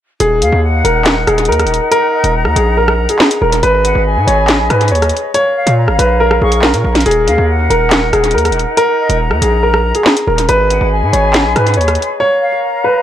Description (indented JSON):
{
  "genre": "hip hop, drill",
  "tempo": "140 BPM",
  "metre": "4/4",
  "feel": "half-time",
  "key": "Eb minor",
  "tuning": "A4 = 442 Hz",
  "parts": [
    { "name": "dark grand piano", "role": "melody", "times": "0.2-13.0 s", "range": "Ab4 to Db5", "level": "-14 LUFS", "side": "equal", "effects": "tape echo" },
    { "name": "mellow small flute group", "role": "sustained chords", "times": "0.2-13.0 s", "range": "Eb4 to Cb6", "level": "-20 LUFS", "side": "left 2 dB", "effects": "none" },
    { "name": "distorted 808-style bass", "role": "bass", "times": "0.2-12.0 s", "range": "Eb1 to Bb2", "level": "-14 LUFS", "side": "equal", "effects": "distortion" },
    { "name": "drill drum kit", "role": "drums", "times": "0.2-12.1 s", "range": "handclaps, hi-hat, rim click, snare drum", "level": "-15 LUFS", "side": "equal", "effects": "tape echo" },
    { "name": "silver concert flute", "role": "second line", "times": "0.4-13.0 s", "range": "Eb5 to Db6", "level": "-20 LUFS", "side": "left 2 dB", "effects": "tape echo" }
  ],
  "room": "light reverb, small room ambience",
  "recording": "echo-heavy mix",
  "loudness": "-10 LUFS",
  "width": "side -11 dB against mid",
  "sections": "0.2-13.0 A section",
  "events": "drums muted 12.2-13.0",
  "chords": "0.2 Ebm; 3.6 Abm; 5.3 Bbm; 7.1 Ebm; 10.5 Abm; 12.2 Bbm"
}